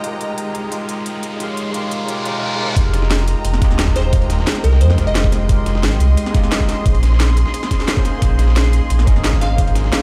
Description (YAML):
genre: liquid drum and bass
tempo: 176 BPM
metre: 4/4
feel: straight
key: F minor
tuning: A4 = 439 Hz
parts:
  - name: overdriven tine electric piano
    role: accompaniment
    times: 0.0-10.0 s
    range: Ab3 to Eb5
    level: -26 LUFS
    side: equal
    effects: subtle chorus, digital delay
  - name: clear studio string section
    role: sustained chords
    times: 0.0-10.0 s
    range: Ab3 to C6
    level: -31 LUFS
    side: equal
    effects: sidechain pumping
  - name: sub bass with octave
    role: bass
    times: 0.0-9.9 s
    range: Eb1 to F2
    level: -17 LUFS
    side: equal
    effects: high-pass filter
  - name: drum and bass drum kit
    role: drums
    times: 0.0-10.0 s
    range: hi-hat, snare drum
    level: -25 LUFS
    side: equal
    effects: high-pass filter on hats, high-pass filter on snare, high-pass filter on room
  - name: riser and reverse cymbal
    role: sound effects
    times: 0.5-2.8 s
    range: none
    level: -30 LUFS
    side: equal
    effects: none
  - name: dusty soul sampler-style drum kit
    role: drums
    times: 2.8-10.0 s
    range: hi-hat, snare drum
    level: -30 LUFS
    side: equal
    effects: high-pass filter on hats, high-pass filter on snare
  - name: electronic kick drum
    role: drums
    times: 2.8-9.7 s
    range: none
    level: -19 LUFS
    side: equal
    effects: none
  - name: glassy wavetable pluck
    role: melody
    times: 4.0-5.4, 9.4-9.6 s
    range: Bb4 to F5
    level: -30 LUFS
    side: equal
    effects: chorus, dub echo
room: light reverb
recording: played on a big sound system in a bare room, stone room reverb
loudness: -17 LUFS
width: mono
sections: 0.0-2.8 A section; 2.8-10.0 B section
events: build-up 0.0-2.8; riser 0.5-2.8; reverse cymbal 2.1-2.8; drop 2.8-10.0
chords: 0.0 Fm11; 1.4 Bbm11; 2.8 Fm11; 6.9 Bbm11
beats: | 0.04 0.38 0.72 1.06 | 1.40 1.74 2.08 2.42 | 2.77 3.11 3.45 3.79 | 4.13 4.47 4.81 5.15 | 5.49 5.83 6.17 6.51 | 6.86 7.20 7.54 7.88 | 8.22 8.56 8.90 9.24 | 9.58 9.93